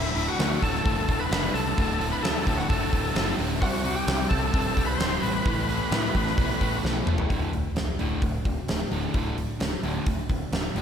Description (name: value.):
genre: classic rock.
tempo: 130 BPM.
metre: 4/4.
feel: straight.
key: D mixolydian.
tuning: A4 = 440 Hz.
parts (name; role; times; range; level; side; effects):
overdriven tonewheel organ; melody; 0.0-6.8 s; E4 to C5; -30 LUFS; left 2 dB; slow rotary speaker, slapback echo.
lightly driven lead guitar; second line; 0.0-6.8 s; E5 to C6; -37 LUFS; right 1 dB; slapback echo, tape echo.
string machine, cellos; sustained chords; 0.0-10.8 s; G3 to D5; -40 LUFS; equal; none.
overdriven electric guitar; riff; 0.0-10.8 s; D2 to C4; -32 LUFS; right 9 dB; none.
overdriven semi-hollow guitar; riff; 0.0-10.8 s; D2 to C4; -33 LUFS; left 9 dB; none.
growling picked electric bass; bass; 0.0-10.8 s; D1 to A2; -31 LUFS; equal; overdrive.
huge arena drum kit; drums; 0.2-10.8 s; hi-hat, kick drum, snare drum, toms; -27 LUFS; equal; none.
room: light reverb.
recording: none.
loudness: -23 LUFS.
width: side -8 dB against mid.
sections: 0.0-7.3 A section; 7.3-10.8 B section.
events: drum fill 6.8-7.3.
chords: 0.0 D; 3.6 Csus2; 5.5 Asus2; 7.3 D.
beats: 0.39 0.85 1.31 | 1.77 2.23 2.69 3.15 | 3.61 4.07 4.53 4.99 | 5.45 5.91 6.37 6.83 | 7.30 7.76 8.22 8.68 | 9.14 9.60 10.06 10.53.